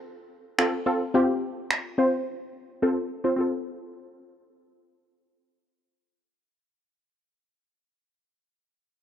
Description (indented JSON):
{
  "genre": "dance-pop",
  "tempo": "107 BPM",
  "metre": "4/4",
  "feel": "straight",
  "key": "F major",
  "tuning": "A4 = 441 Hz",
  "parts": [
    { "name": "wide unison pluck", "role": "accompaniment", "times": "0.0-7.1 s", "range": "C4 to C5", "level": "-24 LUFS", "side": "left 1 dB", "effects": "low-pass filter" },
    { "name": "electronic finger snaps", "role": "drums", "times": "0.6-1.8 s", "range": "none", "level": "-25 LUFS", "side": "right 1 dB", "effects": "overdrive" }
  ],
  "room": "light reverb, digital ambience",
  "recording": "worn, warbling old tape, cassette tape, warbly pitch drift",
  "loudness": "-24 LUFS",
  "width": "side -9 dB against mid",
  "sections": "0.0-3.4 A section; 3.4-5.6 B section",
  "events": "filter sweep on synth pluck 0.0-3.4; silent gap 2.8-3.4",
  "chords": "0.0 F"
}